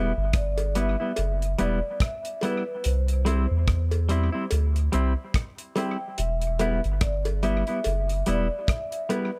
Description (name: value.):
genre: roots reggae.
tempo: 72 BPM.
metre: 4/4.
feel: swing 58% on 16ths.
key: E minor.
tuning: A4 = 439 Hz.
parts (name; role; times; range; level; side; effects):
vibraphone with soft mallets; melody; 0.0-9.4 s; B4 to G5; -34 LUFS; equal; dub echo, plate reverb.
semi-hollow electric guitar; accompaniment; 0.0-9.3 s; G3 to E4; -31 LUFS; equal; dub echo, plate reverb.
soft dub sub bass; bass; 0.0-8.5 s; E1 to E2; -27 LUFS; equal; none.
damped 70s drum kit; drums; 0.3-9.3 s; hi-hat, kick drum, rim click; -30 LUFS; equal; none.
cowbell; percussion; 0.6-9.3 s; none; -37 LUFS; equal; none.
room: light reverb.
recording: none.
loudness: -26 LUFS.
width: mono.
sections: 0.0-9.4 A section.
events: none.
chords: 0.0 Em; 2.8 C; 6.2 Em.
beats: 0.33 1.17 2.00 | 2.84 3.67 4.51 5.34 | 6.18 7.01 7.85 8.68.